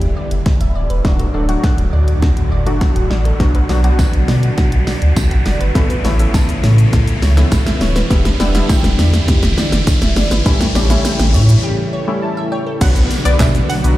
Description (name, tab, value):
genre	dance-pop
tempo	102 BPM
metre	4/4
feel	straight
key	B minor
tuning	A4 = 443 Hz
part	string machine, full ensemble	sustained chords	0.0-14.0 s	A2 to F#4	-23 LUFS	equal	ensemble chorus, sidechain pumping
part	saturated sub bass	bass	0.0-13.9 s	D1 to B2	-14 LUFS	equal	sidechain pumping
part	pop drum kit	drums	0.0-14.0 s	crash cymbal, handclaps, hi-hat, kick drum, shaker, snare drum	-16 LUFS	equal	none
part	riser and downlifter	sound effects	0.0-14.0 s	none	-25 LUFS	equal	none
part	glassy wavetable pluck	arpeggios	0.2-12.8 s	F#4 to F#6	-27 LUFS	right 1 dB	chorus, sidechain pumping, tape echo
part	warm analog keys	accompaniment	1.0-14.0 s	F#3 to A5	-22 LUFS	left 2 dB	chorus, sidechain pumping
part	tambourine	percussion	4.0-13.5 s	none	-32 LUFS	right 6 dB	none
part	analog pluck	melody	12.8-13.8 s	D5 to F#5	-22 LUFS	left 1 dB	chorus, sidechain pumping
room	digital ambience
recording	played on a big sound system in a bare room, large studio reverb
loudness	-12 LUFS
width	side -16 dB against mid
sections	0.0-12.8 A section; 12.8-14.0 B section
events	build-up 0.0-12.8; drum fill 0.0-11.6; riser 0.0-12.8; break 11.6-12.8; synth keys fill 11.9-12.8; drop 12.8-14.0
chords	0.0 Em7; 1.0 D; 3.4 Bm; 5.8 Aadd9; 8.1 Em7; 10.5 A7; 12.8 Bm